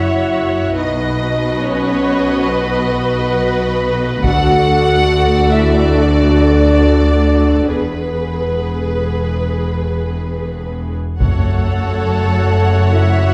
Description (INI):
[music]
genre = cinematic, epic orchestral film score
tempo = 69 BPM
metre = 4/4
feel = straight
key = unclear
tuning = A4 = 440 Hz
[part]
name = clear symphonic violin section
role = melody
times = 0.0-13.3 s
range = B4 to F#5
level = -29 LUFS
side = equal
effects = none
[part]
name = warm symphonic violin section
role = second line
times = 0.0-13.3 s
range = A4 to F#5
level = -23 LUFS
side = equal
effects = none
[part]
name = rich symphonic viola section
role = accompaniment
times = 0.0-13.3 s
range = F#4 to C#5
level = -24 LUFS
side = equal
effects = none
[part]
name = warm French horn section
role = sustained chords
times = 0.0-13.3 s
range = A3 to F#4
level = -21 LUFS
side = equal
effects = none
[part]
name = rich symphonic cello section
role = bass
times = 0.0-13.3 s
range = D2 to B2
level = -22 LUFS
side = equal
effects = none
[part]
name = rich symphonic double bass section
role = bass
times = 0.0-13.3 s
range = E1 to D2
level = -21 LUFS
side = equal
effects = none
[part]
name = solo taiko drums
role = drums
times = 4.2-5.9, 11.2-12.9 s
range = none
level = -21 LUFS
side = equal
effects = none
[part]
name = timpani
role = percussion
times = 11.2-12.5 s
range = F#2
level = -26 LUFS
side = equal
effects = none
[sound]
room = wet recital hall reverb, RT60 1.4 s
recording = recorded in a church or concert hall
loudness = -15 LUFS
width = mono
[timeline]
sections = 0.0-13.3 A section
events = none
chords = 0.0 F#5; 0.8 B; 4.2 D; 7.7 E; 11.2 F#m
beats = | 0.76 1.63 2.50 3.36 | 4.24 5.10 5.96 6.82 | 7.69 8.57 9.45 10.33 | 11.21 12.08 12.96